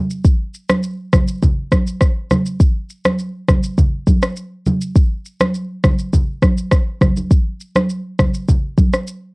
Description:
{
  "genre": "afrobeats",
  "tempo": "102 BPM",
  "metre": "4/4",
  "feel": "straight",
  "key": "none",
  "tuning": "none",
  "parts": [
    { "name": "afro-pop drum kit", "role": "drums", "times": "0.1-9.2 s", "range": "kick drum, rim click, shaker", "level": "-14 LUFS", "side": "equal", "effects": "none" },
    { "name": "congas", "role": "percussion", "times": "0.7-8.9 s", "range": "none", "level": "-20 LUFS", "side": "right 1 dB", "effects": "none" }
  ],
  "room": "light reverb",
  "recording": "home recording on cassette",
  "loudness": "-14 LUFS",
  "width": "side -28 dB against mid",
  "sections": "0.0-9.3 A section",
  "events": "none",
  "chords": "none"
}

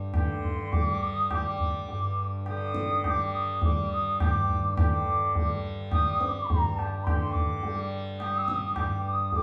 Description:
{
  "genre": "indian classical, Hindustani",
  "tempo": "105 BPM",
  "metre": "5/4",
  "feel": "straight",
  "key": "unclear",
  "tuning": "A4 = 439 Hz",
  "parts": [
    { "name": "tanpura", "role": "drone", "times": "0.0-9.4 s", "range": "G2 to G3", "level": "-34 LUFS", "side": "equal", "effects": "none" },
    { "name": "tabla", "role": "percussion", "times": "0.1-9.4 s", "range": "none", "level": "-31 LUFS", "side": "equal", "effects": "none" },
    { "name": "mellow bansuri", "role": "melody", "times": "0.4-9.4 s", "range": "A5 to Eb6", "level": "-32 LUFS", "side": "equal", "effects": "none" }
  ],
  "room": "wet stone room reverb, RT60 0.9 s",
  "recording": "band playing live in one room, small room reverb",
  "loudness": "-28 LUFS",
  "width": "mono",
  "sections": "0.0-4.8 A section; 4.8-9.4 B section",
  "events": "speeding up 0.0-9.4",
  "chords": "none"
}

